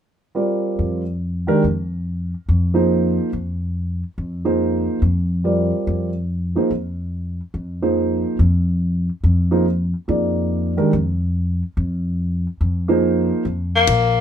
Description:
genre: modal jazz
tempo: 142 BPM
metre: 4/4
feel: swing 66% on 8ths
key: Bb mixolydian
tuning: A4 = 441 Hz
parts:
  - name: dark grand piano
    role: accompaniment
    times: 0.3-13.4 s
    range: Eb3 to D5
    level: -19 LUFS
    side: right 2 dB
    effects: none
  - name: upright bass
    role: bass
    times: 0.8-14.2 s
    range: Bb1 to F2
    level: -20 LUFS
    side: left 1 dB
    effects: none
  - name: growling tenor saxophone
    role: melody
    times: 13.8-14.2 s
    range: Bb3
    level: -14 LUFS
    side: left 5 dB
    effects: none
  - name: ride cymbal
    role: drums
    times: 13.9-14.0 s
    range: none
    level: -27 LUFS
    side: left 9 dB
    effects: none
room: light reverb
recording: minimal, uncompressed stereo recording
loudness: -18 LUFS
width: side -9 dB against mid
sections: 0.4-13.9 A section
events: none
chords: 0.4 Bb9sus4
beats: | 0.36 0.79 1.21 1.63 | 2.06 2.48 2.90 3.33 | 3.75 4.17 4.60 5.02 | 5.44 5.86 6.29 6.71 | 7.13 7.55 7.97 8.39 | 8.82 9.24 9.66 10.08 | 10.50 10.92 11.35 11.77 | 12.19 12.61 13.03 13.45 | 13.88

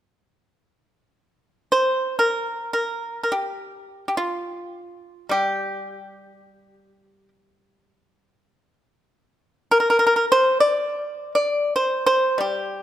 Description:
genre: chinese traditional, Chinese solo plucked strings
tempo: free time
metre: none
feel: none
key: G yu mode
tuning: A4 = 440 Hz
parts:
  - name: pipa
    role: solo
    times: 1.7-12.8 s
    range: G3 to D5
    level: -19 LUFS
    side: equal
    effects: none
room: moderate concert hall reverb, RT60 1.8 s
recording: none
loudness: -19 LUFS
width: side -12 dB against mid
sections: 0.8-12.8 A section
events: none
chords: none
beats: free time

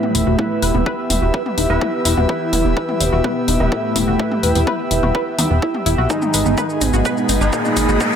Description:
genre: melodic techno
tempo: 126 BPM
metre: 4/4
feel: straight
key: E harmonic minor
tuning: A4 = 440 Hz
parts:
  - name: fat analog lead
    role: melody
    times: 0.0-8.2 s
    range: A3 to E4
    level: -22 LUFS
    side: equal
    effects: analog chorus, ping-pong delay
  - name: dark analog pad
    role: sustained chords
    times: 0.0-8.2 s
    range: G#4 to E6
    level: -28 LUFS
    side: equal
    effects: chorus, sidechain pumping
  - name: tight sequenced synth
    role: arpeggios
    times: 0.0-8.1 s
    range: B3 to B4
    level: -24 LUFS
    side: left 1 dB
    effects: chorus, phaser, sidechain pumping, ping-pong delay
  - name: sync-sweep polysynth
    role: stabs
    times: 0.0-8.2 s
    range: G#3 to E5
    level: -24 LUFS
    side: right 1 dB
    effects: chorus, cassette tape, sidechain pumping, ping-pong delay
  - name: house drum kit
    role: drums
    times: 0.0-8.2 s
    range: hi-hat, shaker, toms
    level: -23 LUFS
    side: left 2 dB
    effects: overdrive, high-pass filter on perc, high-pass filter on snare, high-pass filter on toms, high-pass filter on hats
  - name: airy breathy pad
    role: texture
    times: 0.0-8.2 s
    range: G#3 to B5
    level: -24 LUFS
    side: equal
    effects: chorus, sidechain pumping
  - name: plucky analog bass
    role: bass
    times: 0.1-8.0 s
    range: E1 to E2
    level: -19 LUFS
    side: equal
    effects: sidechain pumping
  - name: electronic kick drum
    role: drums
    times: 0.4-8.1 s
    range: none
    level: -24 LUFS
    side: equal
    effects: overdrive, high-pass filter on kick
  - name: riser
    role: sound effects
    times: 6.7-8.2 s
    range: none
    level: -26 LUFS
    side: equal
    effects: none
room: light reverb, digital ambience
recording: none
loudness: -15 LUFS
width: side -8 dB against mid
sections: 0.0-8.2 A section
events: build-up 0.0-8.2; drum fill 6.1-8.2; riser 6.7-8.2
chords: 0.0 Em; 6.1 G#m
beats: | 0.39 0.86 1.34 1.81 | 2.29 2.77 3.24 3.72 | 4.20 4.67 5.15 5.62 | 6.10 6.58 7.05 7.53 | 8.01

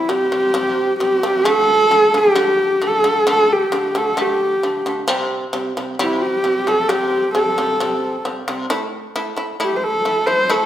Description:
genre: mongolian traditional, Mongolian folk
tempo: 66 BPM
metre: 4/4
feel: straight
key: C gong mode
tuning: A4 = 435 Hz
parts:
  - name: warm horsehead fiddle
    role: melody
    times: 0.0-10.7 s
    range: E4 to C5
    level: -15 LUFS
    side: equal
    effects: none
  - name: shamisen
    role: arpeggios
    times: 0.1-10.7 s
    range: C3 to E4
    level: -22 LUFS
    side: equal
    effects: none
room: wet recital hall reverb, RT60 1.3 s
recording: none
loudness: -15 LUFS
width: side -11 dB against mid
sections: 0.0-10.7 A section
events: none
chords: 0.0 C5; 1.5 D5; 5.1 C5; 8.7 A5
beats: 0.56 | 1.46 2.37 3.27 4.18 | 5.08 5.99 6.89 7.79 | 8.70 9.60 10.50

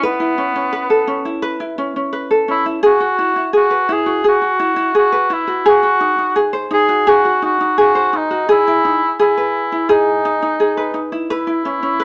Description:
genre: pop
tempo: 85 BPM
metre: 4/4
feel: straight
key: E major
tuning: A4 = 441 Hz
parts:
  - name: ukulele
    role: accompaniment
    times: 0.0-12.0 s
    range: C#4 to B#4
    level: -18 LUFS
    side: equal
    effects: none
  - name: mellow cor anglais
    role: melody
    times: 0.1-12.0 s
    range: B3 to G#4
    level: -19 LUFS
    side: equal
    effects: none
room: moderate studio reverb, RT60 0.8 s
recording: nothing above 11.0 kHz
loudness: -16 LUFS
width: mono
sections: 0.0-12.0 A section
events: none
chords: 0.0 Aadd9; 2.8 Eadd9; 5.7 G#7/D#; 8.5 Emaj7; 11.3 Aadd9 (rootless)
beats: | 0.02 0.72 1.43 2.13 | 2.83 3.54 4.24 4.95 | 5.65 6.36 7.06 7.77 | 8.47 9.18 9.88 10.59 | 11.29 12.00

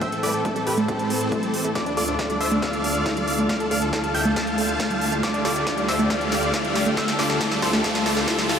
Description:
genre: uplifting trance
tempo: 138 BPM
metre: 4/4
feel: straight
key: unclear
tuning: A4 = 436 Hz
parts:
  - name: big supersaw lead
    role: melody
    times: 0.0-8.6 s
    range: C4 to A5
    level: -26 LUFS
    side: equal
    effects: sidechain pumping, tape echo
  - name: bright concert grand piano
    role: second line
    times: 0.0-8.6 s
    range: D5 to A6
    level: -29 LUFS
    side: left 1 dB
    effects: sidechain pumping, diffuse ambient delay
  - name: lush unison pad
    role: sustained chords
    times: 0.0-8.6 s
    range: D2 to A4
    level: -29 LUFS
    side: equal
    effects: chorus, sidechain pumping
  - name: wide unison pluck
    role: arpeggios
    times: 0.0-8.4 s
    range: G3 to A4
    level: -25 LUFS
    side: right 1 dB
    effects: sidechain pumping, diffuse ambient delay
  - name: big-room dance drum kit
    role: drums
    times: 0.0-8.6 s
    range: hi-hat, snare drum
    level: -28 LUFS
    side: equal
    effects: sidechain pumping on hats, high-pass filter on hats, high-pass filter on snare, high-pass filter on room
  - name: electronic kick drum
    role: drums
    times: 0.0-8.4 s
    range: none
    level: -32 LUFS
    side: left 1 dB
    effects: high-pass filter on kick, high-pass filter on room
  - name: riser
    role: sound effects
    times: 4.8-8.6 s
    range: none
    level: -33 LUFS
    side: left 1 dB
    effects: none
room: wet huge ambient reverb, RT60 8.1 s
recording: dreamy mix soaked in reverb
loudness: -20 LUFS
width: side -7 dB against mid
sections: 0.0-8.6 A section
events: build-up 0.0-8.6; filter sweep on synth pluck 0.0-8.6; drum fill 1.8-8.6; riser 4.8-8.6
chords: 0.0 Am; 1.8 Dm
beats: | 0.01 0.45 0.89 1.32 | 1.75 2.19 2.62 3.06 | 3.49 3.93 4.36 4.80 | 5.23 5.67 6.10 6.54 | 6.97 7.41 7.84 8.28

